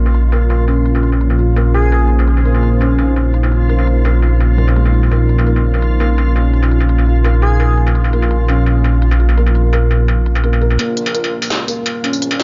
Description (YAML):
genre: half-time drum and bass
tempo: 169 BPM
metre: 4/4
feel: half-time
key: Bb minor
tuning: A4 = 440 Hz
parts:
  - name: deep dark ambient pad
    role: sustained chords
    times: 0.0-12.4 s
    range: Bb3 to F5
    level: -26 LUFS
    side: equal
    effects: chorus, built-in reverb
  - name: felt-muted upright piano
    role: arpeggios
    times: 0.0-12.4 s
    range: Bb2 to Bb4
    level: -23 LUFS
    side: equal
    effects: low-pass filter, tape echo
  - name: dark detuned saw bass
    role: bass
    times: 0.0-12.4 s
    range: Bb1 to Db2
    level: -15 LUFS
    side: equal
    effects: high-pass filter
  - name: backwards swelling texture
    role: texture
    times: 0.0-10.8 s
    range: F4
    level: -29 LUFS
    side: equal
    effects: built-in reverb
  - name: industrial drum kit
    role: drums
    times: 0.1-12.4 s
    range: hi-hat, snare drum, struck metal, tambourine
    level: -26 LUFS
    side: equal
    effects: low-pass filter on hats, low-pass filter on perc, low-pass filter on snare
  - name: airy dreamy lead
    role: melody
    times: 1.7-2.1, 7.4-7.8 s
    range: Ab4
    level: -26 LUFS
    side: equal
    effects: chorus, tape echo
room: little or no reverb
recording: dry, gritty hardware recording, nothing above 7.4 kHz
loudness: -14 LUFS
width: mono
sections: 0.0-10.8 A section; 10.8-12.4 B section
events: build-up 10.8-12.4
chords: 0.0 Bbmadd9